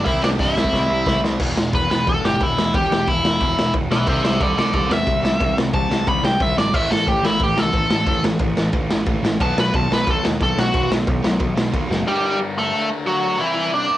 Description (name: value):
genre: punk rock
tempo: 180 BPM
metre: 4/4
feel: straight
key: E minor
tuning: A4 = 440 Hz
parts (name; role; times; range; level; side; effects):
- overdriven electric guitar; melody; 0.0-14.0 s; E3 to B5; -20 LUFS; equal; none
- cranked stack guitar; riff; 0.0-14.0 s; E2 to D4; -29 LUFS; left 6 dB; overdrive, cassette tape
- sludgy distorted guitar; riff; 0.0-12.1 s; E2 to C4; -29 LUFS; equal; none
- tight distorted guitar; riff; 0.0-12.0 s; E2 to C4; -30 LUFS; right 7 dB; none
- overdriven picked electric bass; bass; 0.0-12.0 s; E1 to G2; -25 LUFS; equal; none
- raw garage drum kit; drums; 0.1-12.0 s; crash cymbal, hi-hat, kick drum, ride cymbal, snare drum; -21 LUFS; equal; cassette tape
room: light reverb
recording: home recording on cassette, nothing above 10.9 kHz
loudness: -16 LUFS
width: side -14 dB against mid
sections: 0.0-1.4 A section; 1.4-12.1 B section; 12.1-14.0 C section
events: drum fill 0.7-1.4, 11.9; overdriven electric guitar solo 1.4-12.1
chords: 0.1 C; 1.4 E5; 4.1 C; 6.7 A5; 9.4 B5; 12.1 G5; 12.7 D; 13.4 C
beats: | 0.06 0.40 0.73 1.06 | 1.40 1.73 2.07 2.40 | 2.74 3.07 3.40 3.74 | 4.07 4.41 4.74 5.07 | 5.41 5.74 6.07 6.41 | 6.74 7.07 7.41 7.74 | 8.07 8.41 8.74 9.07 | 9.40 9.74 10.07 10.40 | 10.74 11.07 11.40 11.73 | 12.06 12.40 12.73 13.06 | 13.39 13.72